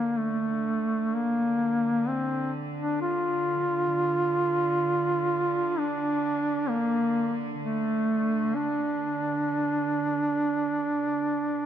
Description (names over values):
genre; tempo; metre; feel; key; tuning
caucasian folk, Caucasian lament; free time; none; none; D minor; A4 = 440 Hz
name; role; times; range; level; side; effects
warm duduk; melody; 0.0-11.7 s; A3 to F4; -25 LUFS; right 1 dB; none
warm chamber cello section; drone; 0.0-11.7 s; D3; -34 LUFS; equal; none
room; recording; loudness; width
moderate concert hall reverb, RT60 2.1 s; none; -24 LUFS; side -10 dB against mid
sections
0.0-11.7 A section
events
none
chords
none